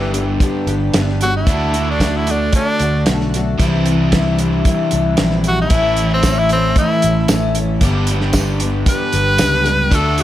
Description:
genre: folk rock and heartland rock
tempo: 114 BPM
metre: 4/4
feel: straight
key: unclear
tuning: A4 = 440 Hz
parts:
  - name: edgy tenor saxophone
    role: melody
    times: 0.0-10.2 s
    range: E3 to B4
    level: -18 LUFS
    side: equal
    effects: none
  - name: picked twelve-string acoustic guitar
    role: accompaniment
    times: 0.0-10.2 s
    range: G2 to G4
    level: -20 LUFS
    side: left 3 dB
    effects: wide subtle chorus
  - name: crunchy overdriven guitar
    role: riff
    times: 0.0-10.2 s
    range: G2 to G4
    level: -21 LUFS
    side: right 1 dB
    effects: none
  - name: fingered electric bass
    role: bass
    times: 0.0-10.2 s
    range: G1 to D2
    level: -19 LUFS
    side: equal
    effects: none
  - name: damped 70s drum kit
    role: drums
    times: 0.1-10.2 s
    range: hi-hat, kick drum, snare drum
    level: -18 LUFS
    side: equal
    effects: none
  - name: tambourine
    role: percussion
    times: 6.2-9.5 s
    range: none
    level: -30 LUFS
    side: right 4 dB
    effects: none
room: light reverb, small room ambience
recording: none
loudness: -13 LUFS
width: side -13 dB against mid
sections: 0.0-10.2 A section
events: tenor saxophone solo 0.0-10.2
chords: 0.0 G; 1.5 D; 3.6 Cadd9; 5.7 A; 7.8 G

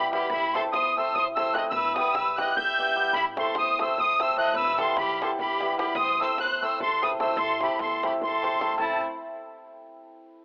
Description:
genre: balkan folk, Balkan wedding band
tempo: 297 BPM (eighths)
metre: 7/8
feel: straight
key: A dorian sharp4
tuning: A4 = 441 Hz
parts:
  - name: musette accordion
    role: melody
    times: 0.0-9.0 s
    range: A5 to G6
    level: -28 LUFS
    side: equal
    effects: cassette tape
  - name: clear violin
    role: second line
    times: 0.0-9.0 s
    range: E4 to E5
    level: -34 LUFS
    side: equal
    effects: cassette tape
  - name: cimbalom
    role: accompaniment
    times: 0.0-9.0 s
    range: G3 to A4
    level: -31 LUFS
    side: equal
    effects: cassette tape
  - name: upright bass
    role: bass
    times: 0.0-9.0 s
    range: E1 to E2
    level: -48 LUFS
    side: equal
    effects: none
  - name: davul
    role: percussion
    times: 0.0-9.0 s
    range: none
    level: -40 LUFS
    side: equal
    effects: none
room: moderate lush hall reverb, RT60 2.4 s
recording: home recording on cassette, telephone sound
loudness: -25 LUFS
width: mono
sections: 0.0-8.8 A section; 8.8-10.2 B section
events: none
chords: 0.3 Am; 1.7 Em; 3.1 Am; 4.5 Em; 6.0 Am

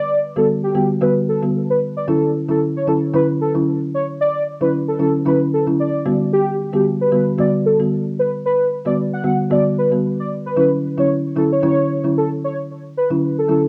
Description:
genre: afrobeats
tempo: 113 BPM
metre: 4/4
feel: swing 55% on 16ths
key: D major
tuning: A4 = 441 Hz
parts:
  - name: warm velvety synth lead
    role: melody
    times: 0.0-13.6 s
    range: G4 to F#5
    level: -21 LUFS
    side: equal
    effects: chorus, cassette tape, analog delay
  - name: folk marimba with medium mallets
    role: accompaniment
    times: 0.4-13.7 s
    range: D3 to F#4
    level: -21 LUFS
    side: equal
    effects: cassette tape
room: moderate studio ambience, RT60 0.5 s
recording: home recording on cassette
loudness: -18 LUFS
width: mono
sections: 0.0-10.6 A section; 10.6-13.7 B section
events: none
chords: 0.0 Gmaj7; 2.1 Dmaj9; 6.1 Gmaj7; 10.6 Dmaj9

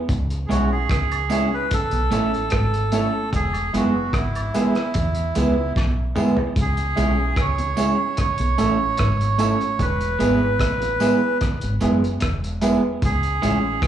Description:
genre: roots reggae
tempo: 74 BPM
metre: 4/4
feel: straight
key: E major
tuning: A4 = 440 Hz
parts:
  - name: deep dub fingered electric bass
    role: bass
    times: 0.1-13.9 s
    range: E1 to E2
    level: -23 LUFS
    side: equal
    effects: none
  - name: cloth-damped thuddy drum kit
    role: drums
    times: 0.1-13.9 s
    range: hi-hat, kick drum, rim click, snare drum, toms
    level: -26 LUFS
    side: equal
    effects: none
  - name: melodica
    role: melody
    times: 0.5-13.9 s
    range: E4 to C#5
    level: -24 LUFS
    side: right 2 dB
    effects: tape echo, plate reverb, slapback echo
  - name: electric guitar at the edge of break-up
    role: accompaniment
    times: 0.5-13.6 s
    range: G#3 to E4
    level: -23 LUFS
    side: right 3 dB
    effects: tape echo, slapback echo
  - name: warm upright piano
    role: stabs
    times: 0.5-13.6 s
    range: E4 to C#5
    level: -28 LUFS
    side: left 2 dB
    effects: plate reverb, slapback echo
  - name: tambourine and woodblock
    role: percussion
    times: 0.5-13.6 s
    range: none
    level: -39 LUFS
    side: right 3 dB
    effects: slapback echo
room: moderate club reverb, RT60 0.5 s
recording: live gig heard through the venue's PA, club reverb, small room ambience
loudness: -18 LUFS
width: side -10 dB against mid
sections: 0.0-6.6 A section; 6.6-13.9 B section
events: drum fill 5.8-6.6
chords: 0.1 C#m; 1.7 A; 3.3 E; 6.6 C#m; 8.2 A; 9.8 E; 13.0 C#m

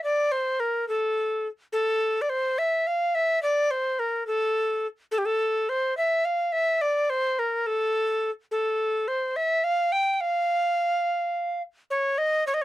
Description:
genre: persian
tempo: 71 BPM (dotted quarters)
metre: 6/8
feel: straight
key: F dastgah mahur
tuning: A4 = 440 Hz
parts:
  - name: breathy bright alto recorder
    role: solo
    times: 0.0-12.6 s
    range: G4 to G5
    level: -23 LUFS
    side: equal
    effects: none
room: moderate booth ambience, RT60 0.2 s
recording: dry, close 1970s-style studio recording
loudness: -23 LUFS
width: side -15 dB against mid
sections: 0.0-11.9 A section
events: none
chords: none

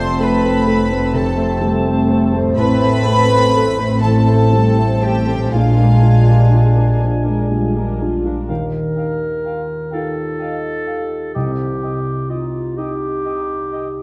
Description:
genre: cinematic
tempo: 41 BPM (dotted quarters)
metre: 6/8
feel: uneven beats, rubato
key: unclear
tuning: A4 = 441 Hz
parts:
  - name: warm symphonic violin section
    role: melody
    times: 0.0-7.0 s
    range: F5 to C6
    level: -30 LUFS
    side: equal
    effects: none
  - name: dark cor anglais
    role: second line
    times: 0.0-13.9 s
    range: Eb5 to A5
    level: -32 LUFS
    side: equal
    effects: none
  - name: flute section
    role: second line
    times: 0.0-13.8 s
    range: F5 to C6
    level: -30 LUFS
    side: equal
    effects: none
  - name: warm clarinet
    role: second line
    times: 0.0-14.0 s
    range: C4 to Bb4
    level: -27 LUFS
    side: equal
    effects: none
  - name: warm symphonic violin section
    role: second line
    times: 0.0-7.0 s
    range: F5 to C6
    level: -30 LUFS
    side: equal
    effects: none
  - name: dark baby grand piano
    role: accompaniment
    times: 0.0-14.0 s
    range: C2 to B4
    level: -23 LUFS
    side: equal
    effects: none
  - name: dark symphonic viola section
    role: accompaniment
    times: 0.0-8.5 s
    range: A3 to C5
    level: -26 LUFS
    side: equal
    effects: none
  - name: mellow French horn section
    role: sustained chords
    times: 0.0-8.1 s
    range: Ab3 to D4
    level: -25 LUFS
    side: equal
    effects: none
  - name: concert harp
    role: arpeggios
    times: 0.0-14.0 s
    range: F2 to Eb5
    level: -28 LUFS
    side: equal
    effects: none
  - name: warm studio cello section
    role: bass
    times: 0.0-7.0 s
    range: F4 to C5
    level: -25 LUFS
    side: equal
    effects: none
  - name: warm symphonic double bass section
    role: bass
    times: 0.0-8.3 s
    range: F1 to Bb1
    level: -19 LUFS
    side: equal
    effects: none
room: wet concert hall reverb, RT60 1.9 s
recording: dark, warm production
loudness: -16 LUFS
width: mono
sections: 0.0-8.5 A section; 8.5-14.0 B section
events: none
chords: 0.0 F; 2.6 Am; 5.5 Bb7; 8.5 Ebadd9; 11.4 Cm

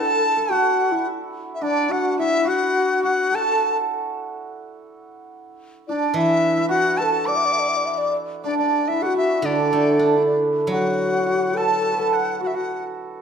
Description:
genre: chinese traditional, Chinese chamber ensemble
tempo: 106 BPM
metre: 2/4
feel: rubato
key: D gong mode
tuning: A4 = 440 Hz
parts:
  - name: dizi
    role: melody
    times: 0.0-3.8, 5.9-12.8 s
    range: D5 to D6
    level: -23 LUFS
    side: left 3 dB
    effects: none
  - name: breathy reedy low xiao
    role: second line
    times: 0.0-3.8, 5.9-12.8 s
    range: D4 to E5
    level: -24 LUFS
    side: left 4 dB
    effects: none
  - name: hammered dulcimer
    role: second line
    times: 0.0-13.2 s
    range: D4 to D5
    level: -24 LUFS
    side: right 9 dB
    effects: none
  - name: steel-string zither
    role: accompaniment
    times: 6.1-12.4 s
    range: D3 to D4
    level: -22 LUFS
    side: right 2 dB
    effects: none
room: wet recital hall reverb, RT60 1.6 s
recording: none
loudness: -18 LUFS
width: side -7 dB against mid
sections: 0.0-8.4 A section; 8.4-13.2 B section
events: none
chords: none

